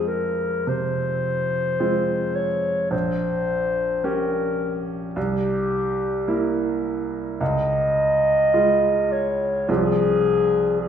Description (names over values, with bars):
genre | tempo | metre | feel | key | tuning
classical, romantic duo for clarinet and grand piano | 53 BPM | 4/4 | rubato | F minor | A4 = 439 Hz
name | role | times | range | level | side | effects
dark clarinet | melody | 0.0-10.9 s | G4 to Eb5 | -21 LUFS | left 2 dB | none
bright baby grand piano | accompaniment | 0.0-10.9 s | Bb1 to G4 | -24 LUFS | right 2 dB | none
room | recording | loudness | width
wet recital hall reverb, RT60 1.6 s | heard from further back in the room | -20 LUFS | side -8 dB against mid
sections
0.0-10.9 A section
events
none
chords
0.0 Fm; 2.9 Gdim/Bb; 5.2 C7; 7.4 Db; 9.7 Fm/C